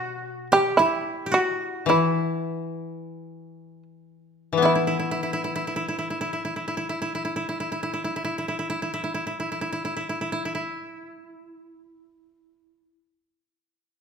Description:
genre	japanese traditional, Japanese chamber music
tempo	37-58 BPM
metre	2/4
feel	rubato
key	E hirajoshi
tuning	A4 = 440 Hz
part	shamisen	melody	0.0-9.5 s	E4 to G4	-22 LUFS	right 3 dB	none
part	koto	second line	0.0-12.8 s	E4 to B4	-28 LUFS	equal	none
part	koto	accompaniment	0.0-9.5 s	B2 to E4	-25 LUFS	left 5 dB	none
room	moderate recital hall reverb, RT60 1.6 s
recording	minimal, uncompressed stereo recording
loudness	-23 LUFS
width	side -6 dB against mid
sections	0.0-4.6 A section; 4.6-11.0 B section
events	slowing down 0.0-4.6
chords	none

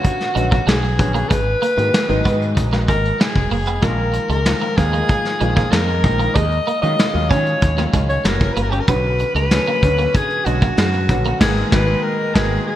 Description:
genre	polished 1980s jazz-funk pop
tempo	95 BPM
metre	4/4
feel	straight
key	unclear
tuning	A4 = 440 Hz
part	breathy alto saxophone	melody	0.0-12.8 s	F#4 to D#5	-21 LUFS	left 1 dB	none
part	clear grand piano	accompaniment	0.0-12.7 s	D3 to G#4	-24 LUFS	equal	analog chorus
part	clean electric guitar	riff	0.0-11.3 s	G#3 to C#4	-27 LUFS	right 3 dB	ensemble chorus
part	vintage brush drum kit	drums	0.0-12.5 s	crash cymbal, hi-hat, kick drum, snare drum	-19 LUFS	equal	gated reverb
part	mellow fretless electric bass	bass	0.4-12.6 s	E#1 to D#3	-20 LUFS	equal	none
room	moderate lush hall reverb, RT60 1.9 s, small room ambience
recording	bright 1980s-style digital production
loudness	-15 LUFS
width	side -12 dB against mid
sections	0.0-12.8 A section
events	drum fill 11.4-12.8; band accent 11.4-12.8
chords	0.0 Bmadd9; 1.3 G#m9; 3.8 A#7sus4; 6.4 D#m11; 8.2 F#7b9; 8.9 Bmadd9; 11.4 G#m9

